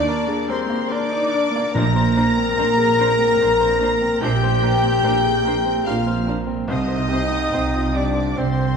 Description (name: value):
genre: cinematic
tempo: 73 BPM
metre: 3/4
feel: rubato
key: unclear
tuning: A4 = 440 Hz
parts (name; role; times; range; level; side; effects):
- dark studio violin section; melody; 0.0-8.8 s; C6 to Bb6; -28 LUFS; left 1 dB; none
- mellow clarinet; second line; 0.0-8.8 s; C5 to Bb5; -28 LUFS; left 2 dB; none
- mellow cor anglais; second line; 0.0-8.8 s; C4 to Bb4; -28 LUFS; right 2 dB; none
- mellow large flute ensemble; second line; 0.0-8.8 s; C5 to Bb5; -28 LUFS; left 2 dB; none
- warm studio violin section; second line; 0.0-8.8 s; C5 to Bb5; -30 LUFS; left 3 dB; none
- bright baby grand piano; accompaniment; 0.0-8.8 s; Bb1 to C5; -27 LUFS; left 1 dB; none
- warm studio viola section; accompaniment; 0.0-8.5 s; G3 to C5; -30 LUFS; equal; none
- mellow French horn section; sustained chords; 0.0-8.8 s; C4 to Bb4; -22 LUFS; left 3 dB; none
- dark studio cello section; bass; 1.8-8.8 s; Bb2 to C3; -24 LUFS; right 4 dB; none
- warm studio double bass section; bass; 1.8-8.8 s; Bb1 to C2; -25 LUFS; right 3 dB; none
- timpani; percussion; 1.8-2.9 s; Bb2; -24 LUFS; right 1 dB; none
room: wet scoring stage reverb, RT60 1.5 s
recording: dark, warm production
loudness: -17 LUFS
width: side -6 dB against mid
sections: 0.0-8.8 A section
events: none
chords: 0.0 Ebmaj7(no3); 1.8 Bbadd9; 6.7 Cm